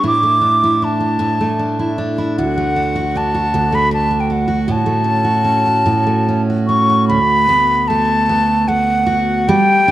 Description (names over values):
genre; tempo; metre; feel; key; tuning
celtic folk, Celtic slow air; 76 BPM; 3/4; uneven beats, rubato; unclear; A4 = 440 Hz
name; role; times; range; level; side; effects
wooden flute; melody; 0.0-9.9 s; F#5 to D6; -15 LUFS; equal; none
picked steel-string acoustic guitar; accompaniment; 0.0-9.9 s; D2 to F#4; -16 LUFS; right 2 dB; none
room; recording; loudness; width
moderate concert hall reverb, RT60 1.9 s; none; -13 LUFS; side -14 dB against mid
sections
0.0-7.1 A section; 7.1-9.9 B section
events
none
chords
0.0 Asus4; 2.4 D; 4.7 A6; 7.1 D6